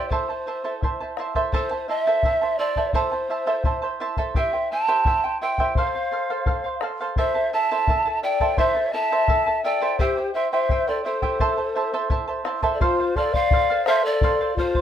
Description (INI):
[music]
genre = andean folk, Andean ensemble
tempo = 85 BPM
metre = 2/4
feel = straight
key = A minor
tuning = A4 = 440 Hz
[part]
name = breathy mellow pan flute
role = melody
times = 0.0-14.8 s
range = C5 to A5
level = -24 LUFS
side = right 2 dB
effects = none
[part]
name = charango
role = accompaniment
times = 0.0-14.8 s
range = E4 to A5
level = -25 LUFS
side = right 3 dB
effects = none
[part]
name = bombo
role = percussion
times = 0.1-14.8 s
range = none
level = -24 LUFS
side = left 1 dB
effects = none
[part]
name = breathy large quena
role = second line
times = 5.7-14.8 s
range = F4 to E5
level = -26 LUFS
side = left 6 dB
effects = none
[sound]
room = moderate studio reverb, RT60 0.5 s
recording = minimal, uncompressed stereo recording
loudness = -20 LUFS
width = side -10 dB against mid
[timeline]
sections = 0.0-1.5 A section; 1.5-12.8 A section; 12.8-14.8 B section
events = none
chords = 0.1 Am; 4.4 C; 5.8 F; 7.2 Am; 10.0 C; 11.4 Am; 12.8 F